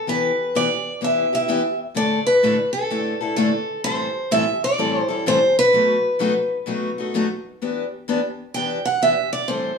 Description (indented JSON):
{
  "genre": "jazz",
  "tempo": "128 BPM",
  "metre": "4/4",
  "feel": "swing 65% on 8ths",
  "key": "E minor",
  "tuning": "A4 = 440 Hz",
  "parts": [
    { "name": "picked steel-string acoustic guitar", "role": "melody", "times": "0.0-9.8 s", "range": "A4 to G5", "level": "-19 LUFS", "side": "right 1 dB", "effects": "none" },
    { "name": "picked steel-string acoustic guitar", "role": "accompaniment", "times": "0.1-9.7 s", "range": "A2 to A4", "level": "-23 LUFS", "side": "left 3 dB", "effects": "none" }
  ],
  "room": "wet studio reverb, RT60 0.8 s",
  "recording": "band playing live in one room, small room ambience",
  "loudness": "-18 LUFS",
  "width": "side -5 dB against mid",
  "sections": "0.0-7.6 A section; 7.6-9.8 B section",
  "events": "steel-string acoustic guitar solo 7.6-9.8",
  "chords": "0.1 Em; 2.0 Asus4; 3.8 Am7; 5.7 B7; 7.6 Em7"
}